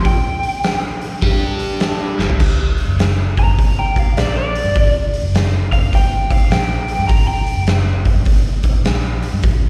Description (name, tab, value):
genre	blues rock power trio and southern rock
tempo	102 BPM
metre	4/4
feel	swing 64% on 8ths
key	G harmonic minor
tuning	A4 = 440 Hz
part	lead guitar through a small cranked amp	melody	0.0-7.6 s	D5 to Bb5	-24 LUFS	equal	overdrive, slapback echo
part	overdriven electric guitar	riff	0.0-2.4 s	G2 to G4	-24 LUFS	equal	phaser, slapback echo
part	vintage muted fingered electric bass	bass	0.0-9.7 s	F#1 to G2	-21 LUFS	equal	none
part	oversized low-tuned drum kit	drums	0.1-9.6 s	crash cymbal, hi-hat, kick drum, snare drum, toms	-19 LUFS	equal	none
room	small room reverb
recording	live gig heard through the venue's PA, recital hall reverb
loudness	-16 LUFS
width	mono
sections	0.0-2.4 A section; 2.4-9.7 B section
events	drum fill 2.1; lead electric guitar solo 2.4-9.7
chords	0.0 G5; 2.4 Gm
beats	| 0.04 0.63 1.22 1.81 | 2.40 2.99 3.58 4.17 | 4.76 5.34 5.93 6.52 | 7.10 7.69 8.27 8.85 | 9.44